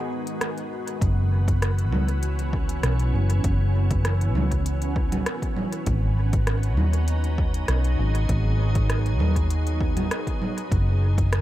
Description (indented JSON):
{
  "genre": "ambient dub",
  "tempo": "99 BPM",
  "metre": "4/4",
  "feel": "straight",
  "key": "unclear",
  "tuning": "A4 = 442 Hz",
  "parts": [
    { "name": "soft additive organ-like pad", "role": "sustained chords", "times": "0.0-11.4 s", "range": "D#3 to B4", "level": "-30 LUFS", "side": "equal", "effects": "ensemble chorus, built-in reverb" },
    { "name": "organic electronic drum kit", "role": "drums", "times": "0.3-11.4 s", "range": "congas, hi-hat, rim click", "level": "-30 LUFS", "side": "right 2 dB", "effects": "dub echo" },
    { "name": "hollow-body short-scale fingered electric bass", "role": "bass", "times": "1.0-11.4 s", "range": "F#1 to D#2", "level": "-22 LUFS", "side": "equal", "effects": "none" },
    { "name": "electronic kick drum", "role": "drums", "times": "1.0-11.3 s", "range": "none", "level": "-26 LUFS", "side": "equal", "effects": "overdrive" }
  ],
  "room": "little or no reverb",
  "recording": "none",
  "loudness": "-21 LUFS",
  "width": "side -14 dB against mid",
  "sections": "0.0-1.0 A section; 1.0-11.4 B section",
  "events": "break 0.0-1.0",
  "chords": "0.0 G#m7; 1.0 F#7sus4; 5.9 G#m7; 10.7 F#7sus4",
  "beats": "0.41 | 1.02 1.62 2.23 2.84 | 3.44 4.05 4.65 5.26 | 5.87 6.47 7.08 7.68 | 8.29 8.90 9.50 10.11 | 10.71 11.32"
}